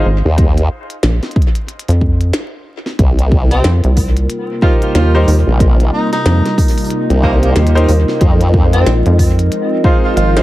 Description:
glitch hop; 92 BPM; 4/4; swing 60% on 16ths; C minor; A4 = 440 Hz
bright concert grand piano; stabs; 0.0, 4.6-10.4 s; Eb4 to C5; -20 LUFS; equal; sidechain pumping, low-pass filter, dub echo
rubbery square bass; bass; 0.0-10.4 s; Ab1 to F2; -11 LUFS; equal
formant-sweep wobble bass; bass; 0.3-8.8 s; Bb1 to F2; -12 LUFS; equal; chorus
electronic kick drum; drums; 0.4-10.0 s; -13 LUFS; equal
glitchy drum kit; drums; 0.4-10.4 s; hi-hat, snare drum; -22 LUFS; equal; dub echo
warm analog pad; sustained chords; 3.0-10.4 s; C3 to Eb4; -21 LUFS; equal; chorus, sidechain pumping
warbly tape-like pad; texture; 3.6-10.4 s; F4 to Eb5; -22 LUFS; left 1 dB; chorus, built-in reverb, sidechain pumping
warm tenor saxophone; melody; 3.5-10.4 s; Bb3 to F4; -21 LUFS; right 1 dB; dub echo
little or no reverb; echo-heavy mix, vinyl crackle; -10 LUFS; side -16 dB against mid
0.0-10.4 A section
fade-in on ambient pad 0.0-10.4
0.0 Fm7; 3.0 Cm7; 8.2 Fm7

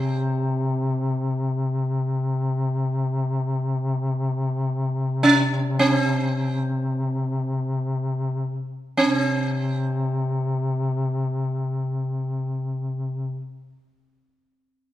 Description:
caucasian folk, Caucasian lament; free time; A4 = 442 Hz
sitar; melody; 0.0-13.4 s; C4 to Db4; -22 LUFS; right 2 dB
mellow duduk; drone; 0.0-13.4 s; C3; -24 LUFS; left 1 dB
wet recital hall reverb, RT60 1.3 s; minimal, uncompressed stereo recording; -22 LUFS; side -13 dB against mid
0.0-9.0 A section; 9.0-14.9 B section
slowing down 0.0-9.0

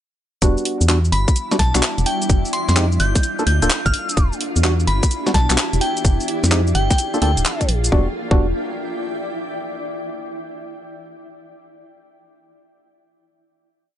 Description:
UK garage, two-step garage; 128 BPM; 4/4; swing 66% on 16ths; A4 = 440 Hz
ethereal airy pad; sustained chords; 1.2-8.1 s; G3 to G4; -29 LUFS; right 1 dB; ensemble chorus, built-in reverb, sidechain pumping
percussive organ stab; stabs; 0.4-8.5 s; G3 to A4; -23 LUFS; equal; analog chorus, cassette tape, dub echo
organ-like FM bass; bass; 0.4-8.5 s; D1 to F2; -18 LUFS; equal
electronic kick drum; drums; 0.4-8.4 s; -17 LUFS; equal
garage drum kit; drums; 0.4-7.9 s; cabasa, handclaps, hi-hat, snare drum; -22 LUFS; equal
granular cloud pad; texture; 1.2-9.8 s; E4 to G5; -29 LUFS; equal; built-in reverb, sidechain pumping
glassy synth bell; melody; 1.1-7.6 s; G5 to G6; -24 LUFS; left 1 dB; chorus, dub echo
light reverb; nothing above 10.6 kHz; -16 LUFS; side -11 dB against mid
0.4-7.9 drop; 7.9-9.8 final chord
drop 0.4-7.9
0.4 Em7; 2.3 Fm7; 3.0 Gm7; 4.2 Em7; 6.0 Fm7; 6.7 Gm7; 7.9 Em7

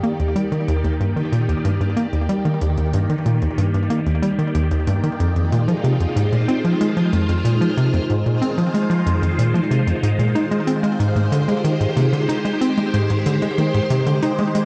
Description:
ambient, sequencer-driven space music; 93 BPM; 4/4; straight; Eb major; A4 = 442 Hz
phased string machine; sustained chords; 0.0-14.7 s; Eb3 to D5; -25 LUFS; equal; ensemble chorus, phaser, cassette tape
tight sequencer bass; riff; 0.0-14.7 s; Eb2 to Eb4; -21 LUFS; equal; cassette tape, delay
electronic hi-hat and congas; percussion; 0.0-14.7 s; -36 LUFS; equal; overdrive, delay
wet studio reverb, RT60 0.6 s; home recording on cassette; -19 LUFS; mono
0.0-14.7 A section
fade-in on drum 0.0-14.7
0.0 Ebmaj7; 5.2 Fm7; 10.4 Abmaj7

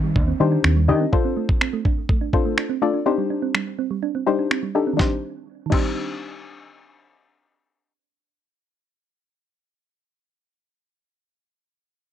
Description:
dance-pop; 124 BPM; 4/4; straight; C dorian; A4 = 441 Hz
thumb-piano-like synth pluck; arpeggios; 0.0-9.9 s; Eb3 to D4; -26 LUFS; right 11 dB; chorus, sidechain pumping, tape echo
vintage muted fingered electric bass; bass; 0.0-1.0 s; Eb2 to Eb3; -19 LUFS; equal; sidechain pumping
downlifter; sound effects; 0.0-1.1 s; -46 LUFS; equal
dusty soul sampler-style drum kit; drums; 0.2-5.9 s; crash cymbal, finger snaps, kick drum, snare drum; -21 LUFS; equal
soft round pluck; accompaniment; 0.4-9.9 s; D4 to Eb5; -23 LUFS; left 8 dB; chorus, sidechain pumping
little or no reverb; dry, close 1970s-style studio recording; -19 LUFS; side -10 dB against mid
0.0-5.0 A section; 5.0-8.9 B section
0.0 Cmadd9; 1.1 F6; 3.1 Cmadd9

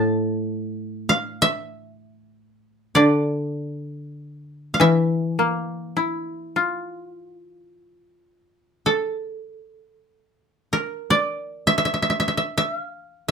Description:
japanese traditional, Japanese chamber music; free time; A4 = 440 Hz
koto; melody; 0.0-13.3 s; A4 to A5; -20 LUFS; right 1 dB
koto; accompaniment; 0.0-8.9 s; A2 to F4; -21 LUFS; left 1 dB
light reverb; -20 LUFS; side -6 dB against mid
0.0-13.3 A section
slowing down 12.1-13.3

